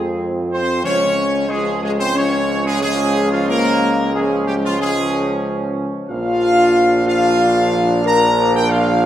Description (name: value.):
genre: classical, ceremonial fanfare.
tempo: 92 BPM.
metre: 4/4.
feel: straight.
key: unclear.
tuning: A4 = 442 Hz.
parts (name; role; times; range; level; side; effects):
clear trumpet section; melody; 0.0-9.1 s; F4 to Bb5; -19 LUFS; right 1 dB; none.
clear trombone section; sustained chords; 0.0-9.1 s; F3 to D4; -24 LUFS; right 2 dB; none.
mellow French horn section; sustained chords; 0.0-9.1 s; F3 to Bb4; -19 LUFS; left 3 dB; none.
clear tuba; bass; 0.0-9.1 s; Bb1 to F2; -20 LUFS; right 2 dB; none.
room: wet recital hall reverb, RT60 1.5 s.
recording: none.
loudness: -14 LUFS.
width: side -11 dB against mid.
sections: 0.0-9.1 A section.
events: none.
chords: 0.0 Fm; 0.8 Db; 6.1 Bb.